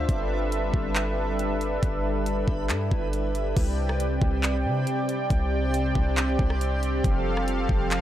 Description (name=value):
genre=hip hop, atmospheric cloud-rap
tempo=138 BPM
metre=4/4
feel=half-time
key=C major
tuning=A4 = 444 Hz
part: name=warm analog pad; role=sustained chords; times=0.0-8.0 s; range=C3 to G5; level=-27 LUFS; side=right 1 dB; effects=chorus, sidechain pumping
part: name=warm 808-style bass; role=bass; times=0.0-8.0 s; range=F1 to C3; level=-27 LUFS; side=equal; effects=none
part: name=backwards swelling texture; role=texture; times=0.0-8.0 s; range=G3 to C5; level=-38 LUFS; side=left 1 dB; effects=built-in reverb
part: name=trap drum kit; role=drums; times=0.1-8.0 s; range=crash cymbal, handclaps, hi-hat, kick drum, rim click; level=-27 LUFS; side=equal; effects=none
room=digital ambience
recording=dry, gritty hardware recording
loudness=-23 LUFS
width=side -12 dB against mid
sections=0.0-3.6 A section; 3.6-8.0 B section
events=none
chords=0.1 G6; 3.6 Csus2; 7.0 Fadd9